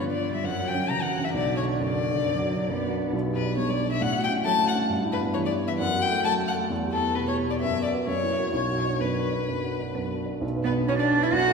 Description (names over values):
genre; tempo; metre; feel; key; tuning
quick classical-period movement for piano trio; 133 BPM; 4/4; rubato; B minor; A4 = 440 Hz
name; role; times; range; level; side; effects
warm violin; melody; 0.0-11.5 s; A4 to A#5; -27 LUFS; left 4 dB; none
rich cello; second line; 0.0-11.5 s; D3 to F#4; -30 LUFS; right 3 dB; none
dark baby grand piano; accompaniment; 0.0-11.5 s; B1 to B4; -26 LUFS; right 1 dB; none
room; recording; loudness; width
wet concert hall reverb, RT60 2.3 s; recorded in a church or concert hall; -23 LUFS; side -5 dB against mid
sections
0.0-10.4 A section; 10.4-11.5 B section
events
none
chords
0.4 F#5; 1.3 Bm; 3.1 G/B; 4.0 F#m/A; 4.9 Em/G; 5.8 F#m; 6.7 Emadd11; 7.6 B5/F#; 8.1 F#7; 8.5 Bm